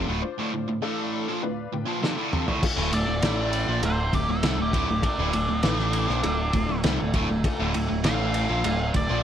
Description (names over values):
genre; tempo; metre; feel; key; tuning
classic rock; 100 BPM; 4/4; straight; D minor; A4 = 440 Hz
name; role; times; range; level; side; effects
honky-tonk upright piano; accompaniment; 0.0-9.1 s; A3 to B5; -35 LUFS; left 9 dB; none
biting overdriven guitar; riff; 0.0-9.2 s; D2 to A3; -27 LUFS; right 1 dB; none
growling picked electric bass; bass; 0.0-9.2 s; D1 to C2; -28 LUFS; equal; overdrive
cloth-damped thuddy drum kit; drums; 2.0-9.1 s; crash cymbal, kick drum, ride cymbal, snare drum, toms; -27 LUFS; equal; none
nasal lead guitar with a parked wah; melody; 2.9-9.2 s; D4 to F5; -28 LUFS; equal; overdrive, slapback echo
room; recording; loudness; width
light reverb; none; -22 LUFS; side -9 dB against mid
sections
0.0-2.6 A section; 2.6-9.2 B section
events
honky-tonk piano fill 0.8-2.6; drum fill 2.0-2.6; lead electric guitar solo 2.6-9.2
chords
0.0 Dm